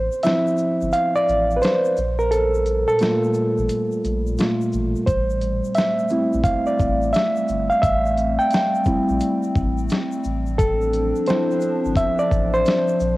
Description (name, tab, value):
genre	lo-fi hip hop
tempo	87 BPM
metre	4/4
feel	swing 66% on 16ths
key	D minor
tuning	A4 = 440 Hz
part	barky reed electric piano	accompaniment	0.0-13.2 s	F3 to G5	-19 LUFS	right 1 dB	overdrive, cassette tape
part	sub bass with octave	bass	0.0-13.2 s	G1 to Bb1	-25 LUFS	equal	none
part	egg shaker	percussion	0.1-13.2 s	none	-50 LUFS	left 9 dB	none
part	dusty soul sampler-style drum kit	drums	0.2-13.2 s	hi-hat, kick drum, shaker, snare drum	-23 LUFS	equal	overdrive, vintage 12-bit sampler grit, cassette tape
part	warbly tape-like pad	sustained chords	2.6-13.2 s	Bb2 to D4	-27 LUFS	left 1 dB	chorus, built-in reverb, cassette tape
room	light reverb, digital ambience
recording	home recording on cassette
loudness	-18 LUFS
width	side -18 dB against mid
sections	0.0-13.2 A section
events	break 0.0-5.1; reed electric piano solo 0.0-13.2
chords	0.0 G9sus4 (rootless); 2.0 Gm9/Bb; 5.1 Am7; 10.2 Dm9/A